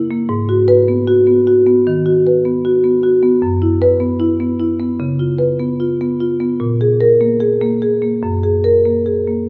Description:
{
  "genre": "classical, contemporary piece for solo marimba",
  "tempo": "75 BPM",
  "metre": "4/4",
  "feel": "rubato",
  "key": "G# minor",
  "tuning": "A4 = 441 Hz",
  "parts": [
    { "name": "marimba with medium mallets", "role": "solo", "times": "0.0-9.5 s", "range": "F#2 to B4", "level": "-15 LUFS", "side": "equal", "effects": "none" }
  ],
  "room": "wet scoring stage reverb, RT60 1.7 s",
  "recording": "none",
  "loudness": "-15 LUFS",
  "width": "mono",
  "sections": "0.0-9.5 A section",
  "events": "none",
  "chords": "0.3 G#m7; 3.4 F#7sus4; 5.0 C#7; 6.6 G#sus2/A#; 8.2 F#add9"
}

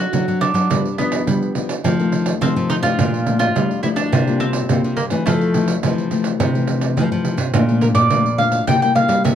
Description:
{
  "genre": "samba and choro",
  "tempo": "105 BPM",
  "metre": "4/4",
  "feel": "straight",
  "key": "F major",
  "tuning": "A4 = 440 Hz",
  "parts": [
    { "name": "mandolin", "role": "melody", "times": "0.0-9.3 s", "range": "A3 to G5", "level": "-20 LUFS", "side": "equal", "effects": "none" },
    { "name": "nylon-string guitar", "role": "accompaniment", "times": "0.0-9.3 s", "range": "F2 to A4", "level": "-22 LUFS", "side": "left 5 dB", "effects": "none" },
    { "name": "nylon-string guitar", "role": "bass", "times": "0.0-9.3 s", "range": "Bb2 to G3", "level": "-20 LUFS", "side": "equal", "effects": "none" },
    { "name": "pandeiro", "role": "percussion", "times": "0.1-9.3 s", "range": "none", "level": "-22 LUFS", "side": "right 7 dB", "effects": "none" }
  ],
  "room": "moderate small room reverb, RT60 0.5 s",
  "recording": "dark, warm production",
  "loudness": "-15 LUFS",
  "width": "side -9 dB against mid",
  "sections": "0.0-7.5 A section; 7.5-9.3 B section",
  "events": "none",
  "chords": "0.0 D7/F#; 0.7 G7; 1.8 F7; 3.0 Bbmaj7; 4.1 C7sus4; 5.3 Fmaj7; 7.5 Bbmaj7; 8.7 C7"
}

